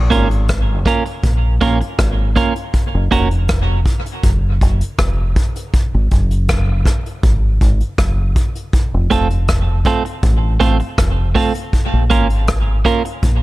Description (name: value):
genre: dub reggae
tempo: 80 BPM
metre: 4/4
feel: straight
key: Bb minor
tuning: A4 = 438 Hz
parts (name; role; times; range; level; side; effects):
- deep dub fingered electric bass; bass; 0.0-13.4 s; F1 to Bb1; -15 LUFS; equal; none
- clean electric guitar; accompaniment; 0.1-3.3, 9.1-13.1 s; A3 to Bb4; -19 LUFS; right 4 dB; dub echo
- vintage brush drum kit; drums; 0.1-13.4 s; hi-hat, kick drum, rim click; -17 LUFS; equal; none
room: small room reverb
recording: none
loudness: -13 LUFS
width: side -18 dB against mid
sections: 0.0-13.4 A section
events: none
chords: 0.0 Bbm; 2.7 Gb; 5.7 Gbsus2; 8.7 F; 11.7 Bbm